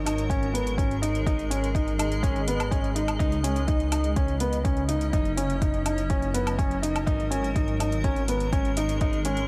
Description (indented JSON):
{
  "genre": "piano and strings electronica",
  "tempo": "124 BPM",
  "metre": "4/4",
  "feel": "straight",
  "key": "unclear",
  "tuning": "A4 = 436 Hz",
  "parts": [
    { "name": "granular cloud pad", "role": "sustained chords", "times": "0.0-9.5 s", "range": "C#3 to D#5", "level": "-37 LUFS", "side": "equal", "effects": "built-in reverb, sidechain pumping" },
    { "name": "dark detuned saw bass", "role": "bass", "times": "0.0-9.5 s", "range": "F#1 to C#2", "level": "-31 LUFS", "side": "equal", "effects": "sidechain pumping" },
    { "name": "dark upright piano", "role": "riff", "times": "0.1-9.4 s", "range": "B3 to D#4", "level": "-30 LUFS", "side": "equal", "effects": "digital delay" },
    { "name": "electronic hi-hat and woodblock", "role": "drums", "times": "0.1-9.5 s", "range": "none", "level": "-37 LUFS", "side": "equal", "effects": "studio reverb" },
    { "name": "electronic kick drum", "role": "drums", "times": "0.3-9.1 s", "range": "none", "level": "-29 LUFS", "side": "equal", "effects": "studio reverb" }
  ],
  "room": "digital ambience",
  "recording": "none",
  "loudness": "-26 LUFS",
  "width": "mono",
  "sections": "0.0-9.5 A section",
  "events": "none",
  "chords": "0.0 G#sus2; 3.2 C#madd9; 5.1 F#; 7.1 G#sus2"
}